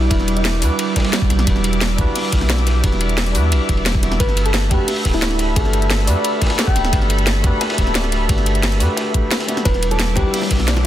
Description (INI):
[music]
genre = liquid drum and bass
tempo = 176 BPM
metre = 4/4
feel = straight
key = E minor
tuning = A4 = 435 Hz
[part]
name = soft struck synth lead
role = melody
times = 0.0-0.6, 4.2-7.0, 9.7-10.9 s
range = E4 to G5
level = -24 LUFS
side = left 1 dB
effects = chorus, ping-pong delay
[part]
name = tine electric piano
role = accompaniment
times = 0.0-10.9 s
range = G3 to E5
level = -24 LUFS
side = equal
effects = ping-pong delay
[part]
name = lush unison pad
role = sustained chords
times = 0.0-10.9 s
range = G3 to D6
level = -24 LUFS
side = right 1 dB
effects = chorus, phaser, sidechain pumping
[part]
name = warm sub bass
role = bass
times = 0.0-10.9 s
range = D1 to G2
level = -18 LUFS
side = equal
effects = none
[part]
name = crunchy breakbeat drum kit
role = drums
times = 0.1-10.8 s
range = hi-hat, ride cymbal, snare drum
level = -27 LUFS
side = equal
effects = high-pass filter on cymbals, high-pass filter on hats, high-pass filter on snare, high-pass filter on room
[part]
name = drum and bass drum kit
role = drums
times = 0.1-10.8 s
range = hi-hat, snare drum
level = -21 LUFS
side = equal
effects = overdrive
[part]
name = electronic kick drum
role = drums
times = 0.1-10.6 s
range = none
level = -18 LUFS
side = equal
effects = none
[part]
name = bongos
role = percussion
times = 9.7-10.8 s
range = none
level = -27 LUFS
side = equal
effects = none
[sound]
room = small room ambience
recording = dense, heavily limited modern master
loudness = -15 LUFS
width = side -12 dB against mid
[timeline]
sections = 0.0-10.9 A section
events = none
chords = 0.0 Em9; 4.2 Gmaj9; 9.7 Em9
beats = | 0.11 0.45 0.79 1.13 | 1.47 1.81 2.15 2.50 | 2.84 3.18 3.52 3.86 | 4.20 4.54 4.88 5.22 | 5.56 5.91 6.25 6.59 | 6.93 7.27 7.61 7.95 | 8.29 8.63 8.97 9.31 | 9.65 10.00 10.34 10.68